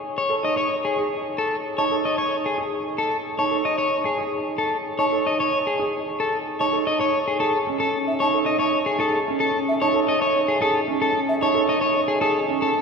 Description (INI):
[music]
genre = classical, minimalist pattern music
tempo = 112 BPM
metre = 3/4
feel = straight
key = A lydian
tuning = A4 = 438 Hz
[part]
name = electric guitar at the edge of break-up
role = melody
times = 0.2-12.8 s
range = G#4 to D#5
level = -22 LUFS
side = left 2 dB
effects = none
[part]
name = clear concert grand piano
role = arpeggios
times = 0.3-12.7 s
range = C#4 to A4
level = -25 LUFS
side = right 4 dB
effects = none
[part]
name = mellow hollow concert flute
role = arpeggios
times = 1.8-11.5 s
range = E5 to A5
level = -32 LUFS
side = right 1 dB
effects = none
[sound]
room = wet cathedral reverb, RT60 5.3 s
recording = heard from further back in the room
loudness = -20 LUFS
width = side -5 dB against mid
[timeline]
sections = 0.0-12.8 A section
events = none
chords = 0.0 Amaj7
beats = 0.04 | 0.57 1.11 1.65 | 2.18 2.72 3.25 | 3.79 4.32 4.86 | 5.39 5.93 6.47 | 7.00 7.54 8.07 | 8.61 9.14 9.68 | 10.22 10.75 11.29 | 11.82 12.36